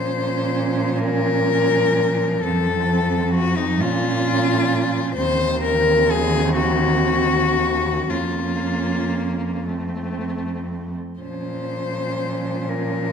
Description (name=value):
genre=classical, lyrical piece for cello ensemble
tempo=38-44 BPM (dotted quarters)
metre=6/8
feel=rubato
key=Bb minor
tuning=A4 = 440 Hz
part: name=warm cello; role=melody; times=0.0-13.1 s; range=Eb4 to C5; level=-21 LUFS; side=left 5 dB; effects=none
part: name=rich cello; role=second line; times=0.0-13.1 s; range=C4 to Db4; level=-26 LUFS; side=right 9 dB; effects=none
part: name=rich cello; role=accompaniment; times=0.0-13.1 s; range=Eb3 to Bb3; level=-28 LUFS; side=equal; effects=none
part: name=dark cello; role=bass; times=0.0-13.1 s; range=Eb2 to Bb2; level=-25 LUFS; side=right 1 dB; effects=none
room=wet scoring stage reverb, RT60 1.6 s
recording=none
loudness=-18 LUFS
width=side -7 dB against mid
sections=0.0-13.1 A section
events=none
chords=0.0 Bbm; 2.4 F; 3.8 Bbm; 5.2 Cdim/Eb; 8.1 Bbm/F; 9.7 F; 11.2 Bbm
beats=1.00 | 2.43 3.80 | 5.17 6.59 | 8.09 9.67 | 11.20 12.70